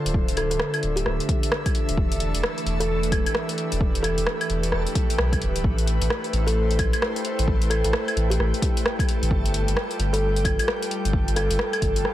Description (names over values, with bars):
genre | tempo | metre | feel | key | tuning
future garage | 131 BPM | 4/4 | swing 62% on 16ths | unclear | A4 = 440 Hz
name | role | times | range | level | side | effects
airy breathy pad | sustained chords | 0.0-12.1 s | D3 to G5 | -29 LUFS | equal | chorus, sidechain pumping
backwards swelling texture | texture | 0.0-12.1 s | A3 to A4 | -37 LUFS | equal | built-in reverb
warm sub bass | bass | 0.1-12.0 s | D1 to B1 | -25 LUFS | equal | sidechain pumping
deep house drum kit | drums | 0.1-12.1 s | claves, hi-hat, rim click | -27 LUFS | equal | overdrive
electronic kick drum | drums | 0.1-11.9 s | none | -24 LUFS | equal | overdrive
kalimba | melody | 0.4-12.0 s | G4 to A4 | -30 LUFS | equal | vintage 12-bit sampler grit, analog delay
room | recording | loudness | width
light reverb | dense, heavily limited modern master, vinyl crackle | -21 LUFS | side -13 dB against mid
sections
0.0-12.1 A section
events
none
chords
0.0 Dm7; 2.0 Em7; 5.6 Am7; 9.3 G7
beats
| 0.14 0.60 1.06 1.52 | 1.98 2.43 2.89 3.35 | 3.81 4.27 4.72 5.18 | 5.64 6.10 6.56 7.01 | 7.47 7.93 8.39 8.85 | 9.30 9.76 10.22 10.68 | 11.14 11.59 12.05